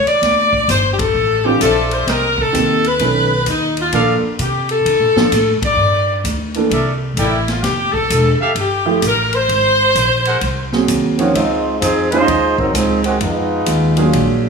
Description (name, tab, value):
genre	jazz, big band swing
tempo	129 BPM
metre	4/4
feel	swing 65% on 8ths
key	Db major from 11.3 s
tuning	A4 = 442 Hz
part	bright saxophone section	melody	0.0-10.9 s	D#4 to D5	-15 LUFS	left 2 dB	none
part	upright bass	bass	0.0-14.5 s	E1 to D3	-20 LUFS	equal	none
part	swinging big-band drum kit	drums	0.1-14.3 s	hi-hat, kick drum, ride cymbal, snare drum	-24 LUFS	left 2 dB	none
part	warm concert grand piano	accompaniment	1.4-14.5 s	Eb3 to Db5	-17 LUFS	right 4 dB	none
part	warm trumpet section	stabs	1.6-10.4 s	F4 to G5	-21 LUFS	equal	none
part	clear trombone section	second line	11.2-14.5 s	Eb3 to C5	-16 LUFS	right 1 dB	none
room	light reverb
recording	studio reverb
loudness	-13 LUFS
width	side -5 dB against mid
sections	0.0-11.3 A section; 11.3-14.5 B section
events	band accent 0.9, 5.6; trombone section solo 11.3-14.5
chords	0.2 Dm9; 2.1 Cm7; 3.0 B9; 3.9 Bbmaj7; 5.8 Gm; 6.7 C13; 7.6 Fmaj9; 9.5 Ab9; 11.3 Dbmaj9; 13.2 Fm7b5